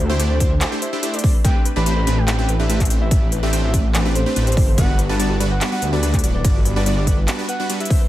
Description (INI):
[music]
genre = future bass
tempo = 144 BPM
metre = 4/4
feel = half-time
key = unclear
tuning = A4 = 440 Hz
[part]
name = thumb-piano-like synth pluck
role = arpeggios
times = 0.0-8.1 s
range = F#4 to F#5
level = -33 LUFS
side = left 2 dB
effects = chorus, sidechain pumping, dub echo
[part]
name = supersaw stab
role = riff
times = 0.0-8.0 s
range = G3 to D5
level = -24 LUFS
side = right 1 dB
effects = sidechain pumping
[part]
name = wide detuned saw bass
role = bass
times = 0.0-7.3 s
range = D1 to D2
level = -19 LUFS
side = equal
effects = chorus, sidechain pumping
[part]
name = soft octave-layered synth lead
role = melody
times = 0.1-8.0 s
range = C5 to B5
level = -28 LUFS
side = equal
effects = chorus, sidechain pumping, dub echo
[part]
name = big-room dance drum kit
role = drums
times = 0.2-8.0 s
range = handclaps, hi-hat, ride cymbal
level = -26 LUFS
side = left 1 dB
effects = overdrive
[part]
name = electronic kick drum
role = drums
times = 0.4-8.0 s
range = none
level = -17 LUFS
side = equal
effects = overdrive
[sound]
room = little or no reverb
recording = none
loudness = -16 LUFS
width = side -14 dB against mid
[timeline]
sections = 0.0-8.1 A section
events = none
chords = 0.0 D9sus4; 1.2 Am11; 4.8 Gmaj7